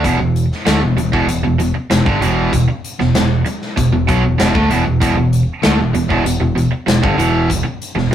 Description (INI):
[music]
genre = classic rock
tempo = 97 BPM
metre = 4/4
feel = straight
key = E minor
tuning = A4 = 440 Hz
[part]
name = overdriven electric guitar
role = riff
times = 0.0-8.1 s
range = E2 to A3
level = -19 LUFS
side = left 2 dB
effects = none
[part]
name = overdriven electric guitar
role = riff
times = 0.0-8.1 s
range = E2 to A3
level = -17 LUFS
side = right 4 dB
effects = none
[part]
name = fingered electric bass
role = bass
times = 0.0-8.1 s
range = E1 to D2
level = -19 LUFS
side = equal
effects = none
[part]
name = big rock drum kit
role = drums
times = 0.0-8.0 s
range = hi-hat, kick drum, snare drum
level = -19 LUFS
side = left 1 dB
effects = none
[sound]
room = moderate small room reverb, RT60 0.6 s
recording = rough rehearsal-room recording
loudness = -13 LUFS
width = side -10 dB against mid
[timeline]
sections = 0.0-8.1 A section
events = none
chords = 0.0 E5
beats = | 0.04 0.66 1.28 1.91 | 2.53 3.15 3.77 4.39 | 5.01 5.63 6.25 6.87 | 7.49 8.11